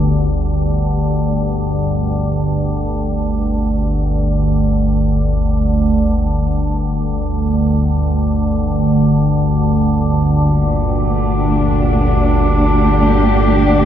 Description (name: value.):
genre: dark ambient drone.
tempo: free time.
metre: none.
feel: none.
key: G minor.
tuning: A4 = 440 Hz.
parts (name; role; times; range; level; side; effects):
organ-like drone; drone; 0.0-13.8 s; G1 to D2; -14 LUFS; equal; ensemble chorus, built-in reverb.
dark symphonic cello section; sustained chords; 10.4-13.8 s; Bb2 to G4; -16 LUFS; equal; none.
room: wet cathedral reverb, RT60 4.9 s.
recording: in a vast, echoing space.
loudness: -13 LUFS.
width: side -10 dB against mid.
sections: 0.0-13.8 A section.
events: none.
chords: 0.0 Gmadd9.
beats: free time.